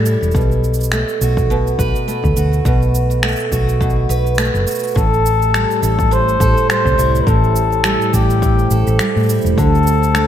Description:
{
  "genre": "folktronica",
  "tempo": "104 BPM",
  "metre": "4/4",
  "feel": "swing 56% on 16ths",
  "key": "A dorian",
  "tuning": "A4 = 440 Hz",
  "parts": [
    { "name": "picked steel-string acoustic guitar", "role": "arpeggios", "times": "0.0-10.3 s", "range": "A2 to B4", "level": "-20 LUFS", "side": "right 2 dB", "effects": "ping-pong delay" },
    { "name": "hollow-body short-scale fingered electric bass", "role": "bass", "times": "0.0-10.3 s", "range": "E1 to A2", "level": "-16 LUFS", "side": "equal", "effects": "tube saturation" },
    { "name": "electronic cabasa and finger snaps", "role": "drums", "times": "0.1-10.3 s", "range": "none", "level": "-22 LUFS", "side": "right 1 dB", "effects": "overdrive" },
    { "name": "electronic kick drum", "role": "drums", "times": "0.3-9.7 s", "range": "none", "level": "-19 LUFS", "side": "equal", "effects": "overdrive" },
    { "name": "mellow flugelhorn", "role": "melody", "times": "5.0-10.3 s", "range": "G4 to C5", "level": "-17 LUFS", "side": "left 2 dB", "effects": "ping-pong delay" },
    { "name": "warbly tape-like pad", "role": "sustained chords", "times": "5.5-10.3 s", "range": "A2 to C5", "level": "-22 LUFS", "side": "left 1 dB", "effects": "chorus, built-in reverb" }
  ],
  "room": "moderate plate reverb, RT60 2.1 s",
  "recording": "dreamy mix soaked in reverb",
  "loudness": "-13 LUFS",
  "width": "side -10 dB against mid",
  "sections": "0.0-10.3 A section",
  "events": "none",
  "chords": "0.3 B7(no3); 5.0 Am7; 9.6 D7",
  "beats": "| 0.35 0.93 1.50 2.08 | 2.66 3.23 3.81 4.39 | 4.96 5.54 6.12 6.70 | 7.27 7.85 8.43 9.00 | 9.58 10.16"
}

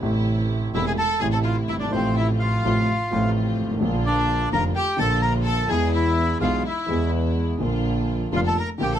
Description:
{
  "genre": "tango",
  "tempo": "126 BPM",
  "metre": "4/4",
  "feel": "rubato",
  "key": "A harmonic minor",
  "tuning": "A4 = 440 Hz",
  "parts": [
    { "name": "warm concert grand piano", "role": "accompaniment", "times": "0.0-9.0 s", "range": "E1 to G#4", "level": "-25 LUFS", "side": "left 1 dB", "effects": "none" },
    { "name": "dark studio string section", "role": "stabs", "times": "0.0-9.0 s", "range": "G#3 to F4", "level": "-33 LUFS", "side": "equal", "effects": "none" },
    { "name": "rich double bass", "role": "bass", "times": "0.0-9.0 s", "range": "E1 to E2", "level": "-24 LUFS", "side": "right 2 dB", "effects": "none" },
    { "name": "bandoneon", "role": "melody", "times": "0.7-9.0 s", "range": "C4 to Bb5", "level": "-25 LUFS", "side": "equal", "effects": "none" },
    { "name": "clear chamber violin section", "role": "second line", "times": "0.7-9.0 s", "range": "C4 to Bb4", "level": "-30 LUFS", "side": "left 4 dB", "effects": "none" }
  ],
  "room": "light reverb",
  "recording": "none",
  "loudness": "-20 LUFS",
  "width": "side -10 dB against mid",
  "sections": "0.0-9.0 A section",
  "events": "none",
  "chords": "0.0 Am; 1.9 F/A; 3.8 Bb; 5.7 E; 7.6 Bb",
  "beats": "| 0.02 0.50 0.98 1.46 | 1.93 2.41 2.88 3.35 | 3.82 4.29 4.75 5.22 | 5.69 6.17 6.64 7.12 | 7.60 8.08 8.56"
}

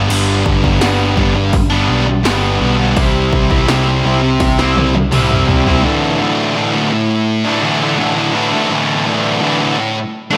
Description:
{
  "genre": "quiet-loud alternative rock",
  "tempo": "84 BPM",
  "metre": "4/4",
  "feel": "straight",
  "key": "unclear",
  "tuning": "A4 = 439 Hz",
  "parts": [
    { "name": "thick fuzz guitar", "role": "riff", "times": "0.0-10.4 s", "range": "G2 to E4", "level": "-16 LUFS", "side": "equal", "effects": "distortion" },
    { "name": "overdriven picked electric bass", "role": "bass", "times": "0.0-5.8 s", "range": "G1 to C2", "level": "-19 LUFS", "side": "equal", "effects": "none" },
    { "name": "punchy analog drum machine", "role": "drums", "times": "0.1-5.8 s", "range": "crash cymbal, hi-hat, kick drum, snare drum, toms", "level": "-20 LUFS", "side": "equal", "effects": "none" }
  ],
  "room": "moderate lush hall reverb, RT60 1.8 s",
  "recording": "big arena sound",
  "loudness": "-14 LUFS",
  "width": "mono",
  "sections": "0.0-5.8 A section; 5.8-10.4 B section",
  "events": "drum fill 4.4-5.8",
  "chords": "0.0 G; 3.0 C; 5.8 Asus4",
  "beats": "| 0.11 0.82 1.54 2.26 | 2.98 3.69 4.41 5.13 | 5.84 6.56 7.28 8.00 | 8.71 9.43 10.14"
}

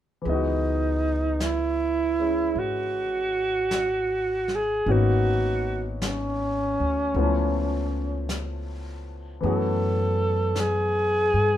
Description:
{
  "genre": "jazz ballad",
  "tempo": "53 BPM",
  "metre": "4/4",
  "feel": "swing 69% on 8ths",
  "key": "C# minor",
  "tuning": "A4 = 445 Hz",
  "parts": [
    { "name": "warm grand piano", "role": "accompaniment", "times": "0.2-11.6 s", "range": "E3 to D#5", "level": "-30 LUFS", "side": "left 3 dB", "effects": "none" },
    { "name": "mellow alto saxophone", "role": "melody", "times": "0.3-11.6 s", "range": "C#4 to A4", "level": "-24 LUFS", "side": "right 1 dB", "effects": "none" },
    { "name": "upright bass", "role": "bass", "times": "0.3-11.6 s", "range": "G#1 to G2", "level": "-28 LUFS", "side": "left 1 dB", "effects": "none" },
    { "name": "vintage brush drum kit", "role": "drums", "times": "0.3-11.6 s", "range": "brushed snare drum, hi-hat, snare drum", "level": "-35 LUFS", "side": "left 2 dB", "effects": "none" }
  ],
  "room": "light reverb",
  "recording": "minimal, uncompressed stereo recording",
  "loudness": "-22 LUFS",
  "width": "side -11 dB against mid",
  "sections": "0.3-11.6 A section",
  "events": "none",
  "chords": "0.3 C#m11; 4.9 G#m11; 7.1 C#7alt; 9.4 F#m11",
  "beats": "| 0.25 1.41 2.56 3.71 | 4.86 6.00 7.14 8.28 | 9.42 10.55"
}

